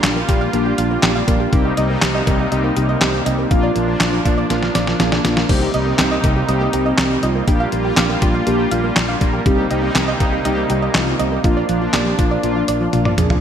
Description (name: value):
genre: synth-pop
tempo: 121 BPM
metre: 4/4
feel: straight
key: C minor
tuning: A4 = 440 Hz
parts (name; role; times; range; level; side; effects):
- mellow synth brass; accompaniment; 0.0-13.4 s; Bb3 to Bb4; -20 LUFS; left 1 dB; chorus
- brassy analog pad; sustained chords; 0.0-13.4 s; C3 to F4; -22 LUFS; right 1 dB; chorus
- soft round pluck; arpeggios; 0.0-13.4 s; F3 to F5; -25 LUFS; right 3 dB; chorus, digital delay
- fretless electric bass; bass; 0.0-13.4 s; Bb1 to C2; -22 LUFS; equal; lush chorus
- detuned 8-bit digital drum machine; drums; 0.0-13.4 s; crash cymbal, handclaps, hi-hat, kick drum, snare drum, toms; -18 LUFS; equal; gated reverb
room: moderate lush hall reverb, RT60 1.8 s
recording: bright 1980s-style digital production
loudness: -14 LUFS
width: side -8 dB against mid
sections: 0.0-13.4 A section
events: drum fill 4.5-5.5, 12.9-13.4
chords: 0.0 Gm7/Bb; 1.5 Cm7; 3.5 Bb; 5.5 Cm7; 7.5 Gm7/Bb; 9.5 Cm7; 11.4 Bb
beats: 0.04 0.53 1.03 | 1.53 2.02 2.52 3.01 | 3.51 4.00 4.50 5.00 | 5.49 5.99 6.49 6.98 | 7.48 7.97 8.47 8.96 | 9.46 9.96 10.45 10.95 | 11.44 11.94 12.44 12.93